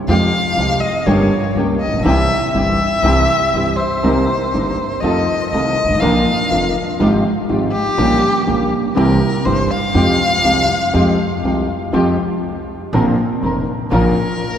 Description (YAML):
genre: tango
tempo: 122 BPM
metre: 4/4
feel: rubato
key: F minor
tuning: A4 = 444 Hz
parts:
  - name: dark violin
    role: second line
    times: 0.1-14.6 s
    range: G4 to F5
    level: -18 LUFS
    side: left 2 dB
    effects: none
  - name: warm concert grand piano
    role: accompaniment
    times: 0.1-14.1 s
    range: F1 to G4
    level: -17 LUFS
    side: equal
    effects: none
  - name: muted studio string section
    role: stabs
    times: 0.1-14.1 s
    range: Ab3 to Bb4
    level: -24 LUFS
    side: right 2 dB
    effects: none
  - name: upright bass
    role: bass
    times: 0.1-14.1 s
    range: F1 to F2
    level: -22 LUFS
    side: right 1 dB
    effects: none
room: wet cathedral reverb, RT60 4.7 s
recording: recorded in a church or concert hall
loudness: -13 LUFS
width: side -9 dB against mid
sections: 0.0-11.9 A section; 11.9-14.6 A section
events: violin solo 0.0-11.9, 11.9-14.6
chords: 0.1 Fmadd9; 1.1 Gdim; 2.1 C; 4.0 Cm7; 5.0 F7; 6.0 Bb; 7.0 Fmadd9/Ab; 8.0 Gdim/Bb; 9.0 C; 9.9 Fmadd9; 12.9 Bbadd9; 13.9 Bbm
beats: | 0.09 0.58 1.07 1.56 | 2.06 2.55 3.04 3.54 | 4.04 4.53 5.03 5.52 | 6.01 6.51 7.00 7.49 | 7.98 8.47 8.96 9.45 | 9.95 10.44 10.94 11.43 | 11.93 12.43 12.92 13.41 | 13.91 14.40